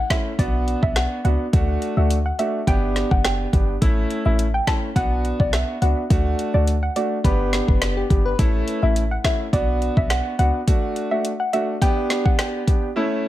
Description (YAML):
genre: dancehall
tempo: 105 BPM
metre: 4/4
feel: straight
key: unclear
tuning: A4 = 440 Hz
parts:
  - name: soft round pluck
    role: melody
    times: 0.0-12.8 s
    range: D5 to A5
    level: -26 LUFS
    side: equal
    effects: chorus, digital delay
  - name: short 808-style bass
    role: bass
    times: 0.0-10.5 s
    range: F#1 to D2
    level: -21 LUFS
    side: equal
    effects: none
  - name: warm grand piano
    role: accompaniment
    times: 0.1-13.3 s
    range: A3 to G4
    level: -24 LUFS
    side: right 1 dB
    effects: sidechain pumping
  - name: afro-pop drum kit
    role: drums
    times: 0.1-12.8 s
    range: hi-hat, kick drum, rim click, snare drum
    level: -21 LUFS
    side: equal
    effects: vintage 12-bit sampler grit
  - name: soft struck synth lead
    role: second line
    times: 7.2-8.7 s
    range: G4 to B4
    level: -28 LUFS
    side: left 5 dB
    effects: chorus, digital delay
room: little or no reverb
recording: none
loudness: -18 LUFS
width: side -14 dB against mid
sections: 0.0-13.3 A section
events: none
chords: 0.4 Bm; 1.5 D; 2.7 G; 3.8 A; 5.0 Bm; 6.1 D; 7.2 G; 8.4 A; 9.5 Bm; 10.7 D; 11.8 G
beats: 0.39 0.96 | 1.53 2.10 2.68 3.25 | 3.82 4.39 4.96 5.53 | 6.10 6.68 7.25 7.82 | 8.39 8.96 9.53 10.10 | 10.68 11.25 11.82 12.39 | 12.96